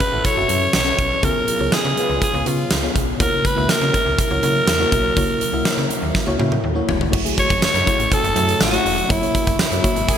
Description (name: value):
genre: 1980s-style pop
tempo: 122 BPM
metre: 4/4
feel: straight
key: unclear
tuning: A4 = 438 Hz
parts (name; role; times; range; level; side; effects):
- raspy alto saxophone; melody; 0.0-10.2 s; E4 to C#5; -20 LUFS; equal; ping-pong delay
- FM electric piano with soft pad layer; accompaniment; 0.0-10.2 s; C#3 to E5; -25 LUFS; left 3 dB; chorus
- ethereal airy pad; sustained chords; 0.1-10.2 s; C#3 to A#4; -30 LUFS; equal; ensemble chorus, built-in reverb
- huge arena drum kit; drums; 0.0-10.2 s; crash cymbal, hi-hat, kick drum, snare drum, tambourine, toms; -20 LUFS; right 1 dB; gated reverb
- mellow synth brass; stabs; 0.1-2.4, 7.4-10.2 s; C#4 to C#5; -30 LUFS; equal; chorus, ping-pong delay
- slap-like FM bass; bass; 0.1-10.1 s; E1 to C#3; -25 LUFS; equal; none
- dark studio violin section; second line; 10.1-10.2 s; G#4; -26 LUFS; right 2 dB; none
room: light reverb, studio reverb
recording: bright 1980s-style digital production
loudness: -16 LUFS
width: side -9 dB against mid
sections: 0.0-7.1 A section; 7.1-10.2 B section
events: drum fill 6.2-7.1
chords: 0.0 F#m7; 1.2 C#7; 3.2 F#7; 7.1 F#m7; 9.1 F#7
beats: 0.25 0.74 | 1.23 1.72 2.22 2.71 | 3.20 3.69 4.18 4.67 | 5.17 5.66 6.15 6.64 | 7.13 7.63 8.12 8.61 | 9.10 9.59 10.09